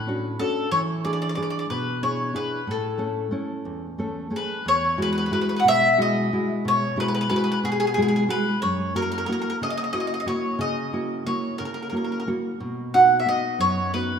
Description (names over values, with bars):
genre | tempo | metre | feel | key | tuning
italian folk, Italian serenade | 61 BPM (dotted quarters) | 6/8 | rubato | A major, E major from 4.7 s | A4 = 440 Hz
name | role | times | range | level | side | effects
mandolin | melody | 0.0-14.2 s | G#4 to F#5 | -23 LUFS | equal | none
nylon-string guitar | accompaniment | 0.0-14.2 s | E2 to A4 | -26 LUFS | equal | none
room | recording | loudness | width
wet concert hall reverb, RT60 2.3 s | minimal, uncompressed stereo recording | -21 LUFS | side -7 dB against mid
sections
0.0-4.7 A section; 4.7-14.2 B section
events
none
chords
0.0 Dmaj7; 0.7 E7; 2.7 Amaj7; 4.7 Eadd9; 8.6 F#7; 12.6 B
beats
| 0.72 1.70 | 2.68 3.66 | 4.67 5.67 | 6.66 7.65 | 8.62 9.60 | 10.59 11.59 | 12.59 13.60